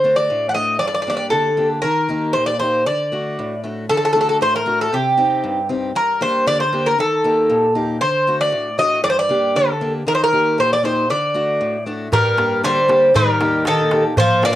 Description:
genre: greek folk, Greek bouzouki band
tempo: 117 BPM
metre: 2/4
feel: straight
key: D phrygian dominant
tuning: A4 = 440 Hz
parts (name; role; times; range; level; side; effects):
- Greek bouzouki; melody; 0.0-14.6 s; G4 to F#5; -16 LUFS; equal; cassette tape
- picked acoustic archtop guitar; accompaniment; 0.0-14.6 s; G2 to G4; -23 LUFS; left 2 dB; cassette tape
- Greek bouzouki; second line; 12.1-14.6 s; Eb3 to Bb3; -22 LUFS; equal; cassette tape
- darbuka; percussion; 12.1-14.6 s; none; -21 LUFS; right 1 dB; none
room: moderate studio reverb, RT60 0.6 s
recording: home recording on cassette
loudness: -15 LUFS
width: side -13 dB against mid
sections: 0.0-3.9 A section; 3.9-12.1 A section; 12.1-14.6 B section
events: none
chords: 0.0 D; 0.8 Gm; 1.8 Eb; 2.9 D; 4.9 Cm; 6.0 Gm; 7.0 Eb; 8.0 D; 9.0 Gm; 10.1 Eb; 11.1 D; 12.1 Gm; 13.2 Eb

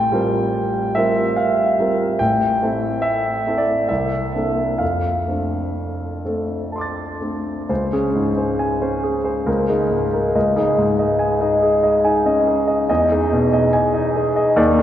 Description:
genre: classical, impressionist solo piano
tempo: 61-73 BPM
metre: 3/4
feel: rubato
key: F major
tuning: A4 = 441 Hz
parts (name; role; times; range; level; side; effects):
- warm grand piano; solo; 0.0-14.8 s; A1 to A6; -16 LUFS; equal; none
room: wet church reverb, RT60 3.4 s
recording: worn, warbling old tape, cassette tape, warbly pitch drift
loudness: -17 LUFS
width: side -11 dB against mid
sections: 0.0-7.7 A section; 7.7-14.8 B section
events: none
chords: 0.0 Gm11/A; 2.2 Am7; 3.9 C13; 4.8 F6; 7.7 Db5; 9.5 Absus24/Db; 10.3 Dbsus2; 12.9 Emaj7

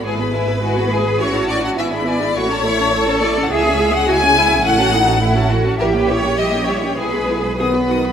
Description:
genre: quick classical-period movement for symphony orchestra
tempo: 104 BPM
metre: 2/4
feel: straight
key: A major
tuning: A4 = 445 Hz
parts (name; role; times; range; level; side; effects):
- rich studio violin section; melody; 0.0-8.1 s; B4 to D#6; -25 LUFS; left 4 dB; none
- rich studio violin section; second line; 0.0-7.9 s; A#4 to G#5; -18 LUFS; left 3 dB; none
- warm studio viola section; accompaniment; 0.0-8.1 s; D#3 to A4; -21 LUFS; right 1 dB; none
- rich studio cello section; bass; 0.0-8.0 s; C#4 to A4; -21 LUFS; right 2 dB; none
- warm studio double bass section; bass; 0.0-8.0 s; G#1 to C#2; -22 LUFS; right 2 dB; none
- clear clarinet; second line; 7.6-8.1 s; B3; -22 LUFS; right 4 dB; none
- mellow French horn section; sustained chords; 7.6-8.1 s; B3; -21 LUFS; left 1 dB; none
room: wet concert hall reverb, RT60 2.2 s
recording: none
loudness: -14 LUFS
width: side -8 dB against mid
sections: 0.0-8.1 A section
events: none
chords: 0.0 E/G#; 1.2 A; 1.8 E7/G#; 2.4 A; 3.5 C#m; 4.6 F#m7/A; 5.8 A#dim7; 7.0 E/B; 7.6 B

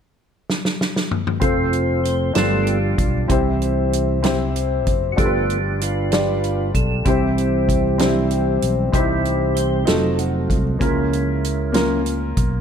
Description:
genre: slow gospel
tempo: 64 BPM (dotted quarters)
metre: 6/8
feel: straight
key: F major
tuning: A4 = 440 Hz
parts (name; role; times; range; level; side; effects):
- natural country drum kit; drums; 0.5-12.5 s; hi-hat, kick drum, snare drum, toms; -22 LUFS; equal; none
- clear concert grand piano; accompaniment; 1.4-12.6 s; G2 to D5; -22 LUFS; left 3 dB; none
- percussive tonewheel organ; sustained chords; 1.4-12.0 s; E3 to C5; -23 LUFS; right 4 dB; fast rotary speaker, overdrive, chorus vibrato
- fingered electric bass; bass; 1.4-12.6 s; F1 to Db2; -23 LUFS; equal; none
room: light reverb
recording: dark, warm production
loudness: -17 LUFS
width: side -8 dB against mid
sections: 0.0-1.4 A section; 1.4-12.6 B section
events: drum fill 0.5-1.4; tonewheel organ solo 1.4-12.6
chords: 0.0 N.C.; 1.4 F; 2.4 G7; 3.3 C; 5.2 G7; 7.1 C; 9.9 F7b9; 10.8 Bbm/Db

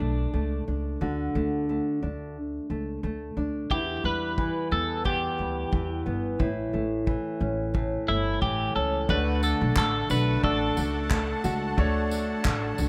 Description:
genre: acoustic pop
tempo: 89 BPM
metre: 4/4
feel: swing 55% on 16ths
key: D major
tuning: A4 = 440 Hz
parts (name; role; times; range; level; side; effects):
- twelve-string electric guitar; melody; 0.0-11.4 s; D4 to B4; -32 LUFS; equal; tape echo
- nylon-string guitar; accompaniment; 0.0-12.9 s; E2 to F#4; -32 LUFS; equal; none
- upright bass; bass; 0.0-12.9 s; G1 to E2; -32 LUFS; equal; none
- natural country drum kit; drums; 3.7-12.9 s; handclaps, kick drum, tambourine; -31 LUFS; equal; none
- clear concert grand piano; accompaniment; 9.1-12.9 s; A3 to D5; -35 LUFS; equal; none
- warm studio string section; sustained chords; 9.1-12.9 s; D4 to A5; -39 LUFS; equal; none
- picked steel-string acoustic guitar; arpeggios; 9.1-12.9 s; A3 to F#4; -36 LUFS; equal; none
room: light reverb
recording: none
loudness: -27 LUFS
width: mono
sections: 0.0-9.1 A section; 9.1-12.9 B section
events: none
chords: 0.0 D; 3.7 Em; 6.4 A; 9.1 D

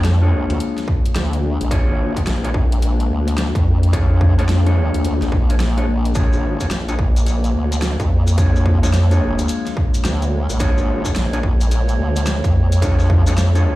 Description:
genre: glitch hop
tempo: 108 BPM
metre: 4/4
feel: swing 63% on 16ths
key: unclear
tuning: A4 = 437 Hz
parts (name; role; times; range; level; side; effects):
- warbly tape-like pad; sustained chords; 0.0-13.8 s; Ab3 to C#5; -25 LUFS; left 3 dB; chorus, built-in reverb, sidechain pumping
- formant-sweep wobble bass; bass; 0.0-13.8 s; Ab1 to F2; -17 LUFS; equal; chorus, overdrive
- dubstep drum kit; drums; 0.0-13.6 s; hi-hat, snare drum; -26 LUFS; equal; none
- mellow electric guitar; stabs; 0.2-13.8 s; D4 to C#5; -26 LUFS; left 1 dB; sidechain pumping, ping-pong delay
- electronic kick drum; drums; 0.9-13.2 s; none; -18 LUFS; equal; distortion
- maracas; percussion; 6.1-13.6 s; none; -33 LUFS; left 3 dB; none
room: light reverb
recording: played on a big sound system in a bare room, large studio reverb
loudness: -15 LUFS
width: side -17 dB against mid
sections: 0.0-13.8 A section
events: none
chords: 0.0 Bb7#9

